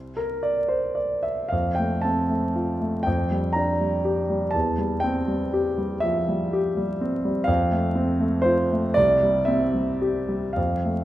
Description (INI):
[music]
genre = classical, romantic nocturne for solo piano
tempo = 40 BPM (dotted quarters)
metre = 6/8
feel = uneven beats, rubato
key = unclear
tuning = A4 = 439 Hz
[part]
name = warm grand piano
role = solo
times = 0.0-11.0 s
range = C2 to Bb5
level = -21 LUFS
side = equal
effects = none
[sound]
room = wet recital hall reverb, RT60 1.5 s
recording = minimal, uncompressed stereo recording, vinyl crackle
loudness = -21 LUFS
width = side -14 dB against mid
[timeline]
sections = 0.0-11.0 A section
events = none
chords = 0.0 C; 1.5 F; 3.1 Gm7/F; 4.5 C/E; 7.5 F; 9.0 C